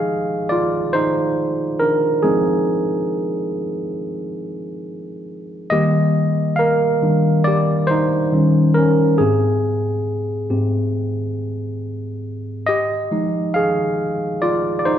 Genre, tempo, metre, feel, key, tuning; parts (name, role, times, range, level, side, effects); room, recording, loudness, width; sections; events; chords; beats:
R&B; 69 BPM; 4/4; swing 60% on 16ths; F dorian; A4 = 440 Hz
barky tine electric piano; solo; 0.0-15.0 s; Ab2 to F5; -17 LUFS; equal; overdrive
wet recital hall reverb, RT60 1.6 s; recorded in a church or concert hall, nothing above 7.9 kHz; -16 LUFS; side -10 dB against mid
0.0-15.0 A section
tine electric piano solo 0.0-15.0
0.0 Fm9; 5.7 Ebmaj7; 8.3 Eb6; 9.2 Abmaj7; 12.7 Fm9
0.49 1.36 | 2.23 3.10 3.97 4.84 | 5.71 6.58 7.45 8.31 | 9.19 10.05 10.92 11.79 | 12.66 13.53 14.40